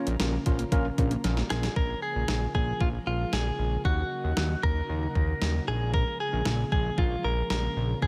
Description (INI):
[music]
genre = synth-pop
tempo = 115 BPM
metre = 4/4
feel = straight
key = Bb minor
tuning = A4 = 442 Hz
[part]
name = tine electric piano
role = accompaniment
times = 0.0-1.6 s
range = Bb3 to Bb4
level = -35 LUFS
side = equal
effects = subtle chorus
[part]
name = ensemble organ-string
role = sustained chords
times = 0.0-8.1 s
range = Db3 to Bb4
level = -39 LUFS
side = equal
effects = ensemble chorus
[part]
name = fat analog bass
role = bass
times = 0.1-8.1 s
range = Bb1 to Eb2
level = -31 LUFS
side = equal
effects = none
[part]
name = clean 12-bit digital drum machine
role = drums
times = 0.1-8.1 s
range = hi-hat, kick drum, snare drum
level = -31 LUFS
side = equal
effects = none
[part]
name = unison pluck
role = arpeggios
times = 0.2-1.7 s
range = F3 to F4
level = -38 LUFS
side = equal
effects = none
[part]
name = direct-recorded clean electric guitar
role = melody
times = 1.5-8.1 s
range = F4 to Bb4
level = -34 LUFS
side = equal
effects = none
[sound]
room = light reverb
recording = none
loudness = -28 LUFS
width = mono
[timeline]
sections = 0.0-1.8 A section; 1.8-8.1 B section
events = drum fill 1.2-1.8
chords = 0.0 Bbm; 1.8 Bbm7; 3.9 Ebm7; 5.7 Bbm7